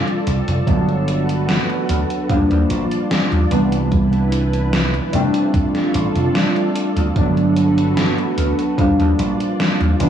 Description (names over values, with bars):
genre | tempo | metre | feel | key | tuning
vaporwave | 74 BPM | 4/4 | straight | G major | A4 = 440 Hz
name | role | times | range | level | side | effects
warbly lo-fi synth keys | accompaniment | 0.0-10.1 s | E3 to D4 | -19 LUFS | equal | lush chorus, analog delay
soft string machine | sustained chords | 0.0-10.1 s | E4 to A5 | -25 LUFS | right 1 dB | ensemble chorus
gated 80s digital drum machine | drums | 0.1-10.1 s | hi-hat, snare drum | -23 LUFS | equal | gated reverb, gated reverb snare
vintage slap bass | bass | 0.3-10.1 s | F1 to Eb2 | -19 LUFS | equal | none
electronic kick drum | drums | 0.7-9.0 s | none | -19 LUFS | equal | none
room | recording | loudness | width
light reverb | cassette tape, small room ambience | -15 LUFS | side -9 dB against mid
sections
0.0-10.1 A section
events
none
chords
0.0 F69; 0.7 Gmaj9; 2.3 Ebmaj9; 3.5 Cmaj7; 5.1 F69; 7.2 Gmaj9; 8.8 Ebmaj9